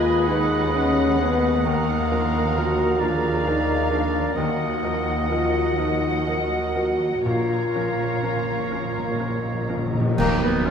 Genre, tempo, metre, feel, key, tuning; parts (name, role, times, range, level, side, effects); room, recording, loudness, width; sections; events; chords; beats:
cinematic, emotional film score for orchestra; 40-45 BPM (dotted quarters); 6/8; rubato; Eb minor; A4 = 439 Hz
muted studio violin section; melody; 0.0-10.7 s; Bb4 to Bb5; -33 LUFS; left 4 dB
hollow small flute group; second line; 0.0-9.8 s; F5 to B5; -31 LUFS; left 1 dB
muted studio violin section; second line; 0.0-10.7 s; Eb4 to F#5; -34 LUFS; left 2 dB
warm clarinet; second line; 0.0-10.7 s; Bb3 to Bb4; -31 LUFS; right 3 dB
warm oboe; second line; 0.0-10.7 s; Eb4 to D#5; -31 LUFS; right 2 dB
bright baby grand piano; accompaniment; 0.0-10.7 s; Bb1 to B4; -30 LUFS; right 1 dB
muted studio viola section; accompaniment; 0.0-10.7 s; Gb3 to B4; -33 LUFS; right 2 dB
mellow French horn section; sustained chords; 0.0-10.7 s; Gb3 to Gb4; -24 LUFS; left 3 dB
concert harp; arpeggios; 0.0-10.7 s; Bb2 to D#5; -33 LUFS; left 7 dB
muted studio cello section; bass; 0.0-10.7 s; D#2 to Eb3; -30 LUFS; right 4 dB
muted studio double bass section; bass; 0.0-10.7 s; Bb1 to D#2; -29 LUFS; right 4 dB
cymbal swell, clash cymbals and concert bass drum; percussion; 7.3-10.7 s; -33 LUFS; right 1 dB
timpani; percussion; 7.3-10.7 s; Bb2 to Eb3; -27 LUFS; left 1 dB
wet scoring stage reverb, RT60 1.7 s; minimal, uncompressed stereo recording; -20 LUFS; side -7 dB against mid
0.0-10.2 A section
timpani fill 7.3-10.2; band accent 10.2-10.7
0.0 B/D#; 1.6 Bb/Eb; 4.4 Ebmadd9; 7.3 Bbm; 10.2 Ebm
0.29 | 1.64 3.00 | 4.37 5.78 | 7.26 8.71 | 10.17